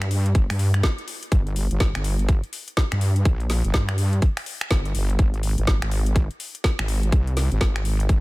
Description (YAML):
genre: bass house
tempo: 124 BPM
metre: 4/4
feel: swing 62% on 16ths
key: unclear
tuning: A4 = 439 Hz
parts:
  - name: wobble bass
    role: bass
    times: 0.0-8.2 s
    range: G1 to G2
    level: -22 LUFS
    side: equal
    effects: chorus, overdrive, sidechain pumping
  - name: garage drum kit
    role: drums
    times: 0.0-8.2 s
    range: finger snaps, hi-hat, snare drum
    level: -28 LUFS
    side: equal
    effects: none
  - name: electronic kick drum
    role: drums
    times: 0.3-8.2 s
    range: none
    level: -19 LUFS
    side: equal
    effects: none
room: little or no reverb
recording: none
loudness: -20 LUFS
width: side -22 dB against mid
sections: 0.0-8.2 A section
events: none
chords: none